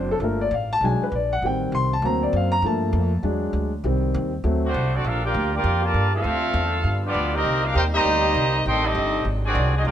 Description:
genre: jazz, big band swing.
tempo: 199 BPM.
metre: 4/4.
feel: swing 63% on 8ths.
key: G minor.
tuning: A4 = 440 Hz.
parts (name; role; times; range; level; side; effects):
warm concert grand piano; accompaniment; 0.0-4.7 s; Eb3 to C6; -23 LUFS; left 2 dB; none.
upright bass; bass; 0.0-9.9 s; Gb1 to G2; -24 LUFS; equal; none.
clear trumpet section; melody; 4.6-9.9 s; A3 to C6; -22 LUFS; equal; none.
dark trombone section; second line; 4.6-9.9 s; D3 to G4; -28 LUFS; right 1 dB; none.
clear trombone section; sustained chords; 5.1-9.9 s; Bb2 to G4; -32 LUFS; equal; none.
room: light reverb.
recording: none.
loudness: -20 LUFS.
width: side -10 dB against mid.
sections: 0.0-5.0 A section; 5.0-9.9 B section.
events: grand piano solo 0.0-5.0.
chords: 0.2 Gm7; 0.8 Bb7b9b13; 1.4 Am7b5; 2.0 Daug7; 2.6 Gm9; 3.2 E7; 3.8 Cm; 4.4 D7; 5.0 Gm9; 6.2 Dm9; 6.8 G7; 7.4 Cm7; 8.7 Am7b5; 9.3 Ab7#11.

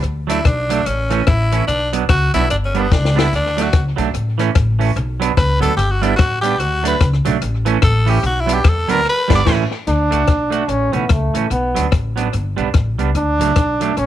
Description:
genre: ska.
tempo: 146 BPM.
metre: 4/4.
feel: swing 60% on 8ths.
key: D major.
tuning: A4 = 442 Hz.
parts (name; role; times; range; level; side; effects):
upright bass; bass; 0.0-14.1 s; G1 to E2; -19 LUFS; left 1 dB; none.
compact cocktail drum kit; drums; 0.0-14.1 s; crash cymbal, hi-hat, kick drum, rim click, snare drum; -17 LUFS; left 2 dB; tape echo.
raspy tenor saxophone; melody; 0.3-9.5 s; Bb3 to D5; -19 LUFS; left 1 dB; none.
clean electric guitar; accompaniment; 0.3-13.9 s; E3 to F#4; -21 LUFS; right 10 dB; none.
bright trombone; melody; 9.9-14.1 s; A3 to D4; -18 LUFS; right 1 dB; none.
room: small room ambience.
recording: 1960s-style stereo.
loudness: -14 LUFS.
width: side -12 dB against mid.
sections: 0.0-9.9 A section; 9.9-14.1 B section.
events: tenor saxophone solo 0.0-9.9; drum fill 2.9-3.3; band accent 9.1-9.9.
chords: 0.0 D; 0.9 A; 1.7 Bm; 2.5 G; 3.3 D; 4.1 A; 5.0 Bm; 5.8 G; 6.6 D; 7.4 A; 8.2 Bm; 9.1 G; 9.5 A; 9.9 D; 10.7 A; 11.5 Bm; 12.3 G; 13.2 D.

